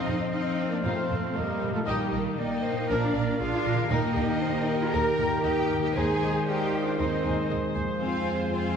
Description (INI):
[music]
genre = cinematic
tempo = 117 BPM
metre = 4/4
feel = straight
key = Eb major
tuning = A4 = 440 Hz
[part]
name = warm symphonic violin section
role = melody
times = 0.0-8.8 s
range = G4 to Bb5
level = -40 LUFS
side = left 4 dB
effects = none
[part]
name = clear clarinet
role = second line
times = 0.0-8.8 s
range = G4 to Eb5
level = -36 LUFS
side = left 1 dB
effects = none
[part]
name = dark cor anglais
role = second line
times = 0.0-8.8 s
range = C5 to Ab5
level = -38 LUFS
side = equal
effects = none
[part]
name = dark symphonic violin section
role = second line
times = 0.0-8.8 s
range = D4 to Ab5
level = -38 LUFS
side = left 4 dB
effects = none
[part]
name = silver concert flute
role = second line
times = 0.0-8.8 s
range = G4 to Bb5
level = -38 LUFS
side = left 2 dB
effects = none
[part]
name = rich symphonic viola section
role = accompaniment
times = 0.0-8.8 s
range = Eb3 to G4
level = -33 LUFS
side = equal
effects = none
[part]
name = concert harp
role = arpeggios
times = 0.0-8.8 s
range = Bb2 to C5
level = -35 LUFS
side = left 4 dB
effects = none
[part]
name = rich studio cello section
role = bass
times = 0.0-8.8 s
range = G3 to Bb4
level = -32 LUFS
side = right 2 dB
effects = none
[part]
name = warm symphonic double bass section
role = bass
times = 0.1-8.8 s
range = Bb1 to F2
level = -33 LUFS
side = right 3 dB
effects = none
[part]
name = clear trombone section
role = sustained chords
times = 0.8-8.8 s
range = Bb2 to G3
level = -36 LUFS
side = right 1 dB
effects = none
[part]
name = bright trumpet section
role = stabs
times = 0.8-8.8 s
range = Bb4 to F5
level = -35 LUFS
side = right 1 dB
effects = none
[part]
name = dark French horn section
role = sustained chords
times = 0.9-8.8 s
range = Ab3 to C5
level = -36 LUFS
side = equal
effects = none
[sound]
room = wet scoring stage reverb, RT60 2.0 s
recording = heard from further back in the room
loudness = -24 LUFS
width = side -7 dB against mid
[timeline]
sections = 0.0-8.8 A section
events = none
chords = 0.0 F7; 1.9 Eb/Bb; 2.9 Bb; 3.9 Eb; 6.0 Ab/Eb; 8.0 Fm